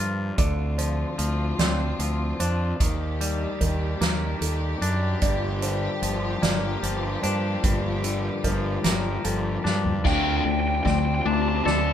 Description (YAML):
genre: post-rock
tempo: 50 BPM (dotted quarters)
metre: 6/8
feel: straight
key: G minor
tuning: A4 = 439 Hz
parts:
  - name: felt-muted upright piano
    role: arpeggios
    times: 0.0-11.9 s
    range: A4 to F5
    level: -35 LUFS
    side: right 4 dB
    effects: none
  - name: twangy electric guitar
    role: arpeggios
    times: 0.0-11.9 s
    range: G2 to A4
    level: -30 LUFS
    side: left 3 dB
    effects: none
  - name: fuzz fingered electric bass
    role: bass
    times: 0.0-11.9 s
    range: G1 to G2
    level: -26 LUFS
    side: equal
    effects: overdrive
  - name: rich studio string section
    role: sustained chords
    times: 0.4-11.9 s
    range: D3 to G4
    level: -34 LUFS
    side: left 2 dB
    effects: none
  - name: soft-mallet drum kit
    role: drums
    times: 0.4-11.8 s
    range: crash cymbal, hi-hat, kick drum, ride cymbal, snare drum, toms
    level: -26 LUFS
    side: right 1 dB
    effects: none
  - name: overdriven electric guitar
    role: riff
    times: 10.0-11.9 s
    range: D3 to D4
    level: -26 LUFS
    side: left 7 dB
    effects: none
  - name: biting lead guitar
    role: melody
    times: 10.1-11.9 s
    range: G5 to A5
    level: -27 LUFS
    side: right 1 dB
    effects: overdrive
room: moderate studio reverb, RT60 0.6 s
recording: band playing live in one room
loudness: -22 LUFS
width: side -10 dB against mid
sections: 0.0-10.0 A section; 10.0-11.9 B section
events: drum fill 9.6-10.0, 10.0-11.9; build-up 10.0-11.9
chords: 0.4 Dm7; 2.8 Ebmaj7; 5.2 Gm7; 10.0 Dm7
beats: | 0.38 1.59 | 2.80 4.01 | 5.22 6.42 | 7.63 8.84 | 10.05 11.25